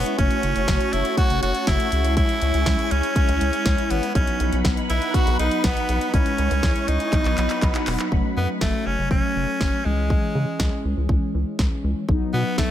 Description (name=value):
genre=synth-pop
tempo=121 BPM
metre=4/4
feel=straight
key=C# minor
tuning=A4 = 439 Hz
part: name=raspy tenor saxophone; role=melody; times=0.0-12.7 s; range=G#3 to F#4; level=-26 LUFS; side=equal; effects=ping-pong delay
part: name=mellow synth brass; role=accompaniment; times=0.0-12.7 s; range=E3 to F#4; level=-27 LUFS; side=left 2 dB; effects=chorus
part: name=soft string machine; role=sustained chords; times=0.0-8.1 s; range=D#4 to C#6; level=-29 LUFS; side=equal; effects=phaser, ensemble chorus
part: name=rubbery square bass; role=bass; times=0.0-12.7 s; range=E1 to C#3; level=-24 LUFS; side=equal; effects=none
part: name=house drum kit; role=drums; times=0.1-12.7 s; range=handclaps, hi-hat, kick drum, snare drum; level=-22 LUFS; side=equal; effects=none
room=digital ambience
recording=none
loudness=-19 LUFS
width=side -11 dB against mid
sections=0.0-8.1 A section; 8.1-12.7 B section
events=drum fill 7.1-8.1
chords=0.2 F#m; 1.9 C#m; 4.2 B; 6.1 C#m; 7.1 B; 8.1 F#m; 9.9 C#m; 12.1 B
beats=| 0.18 0.68 1.18 1.67 | 2.17 2.67 3.16 3.66 | 4.15 4.65 5.14 5.64 | 6.14 6.63 7.13 7.62 | 8.12 8.62 9.11 9.61 | 10.10 10.60 11.09 11.59 | 12.09 12.58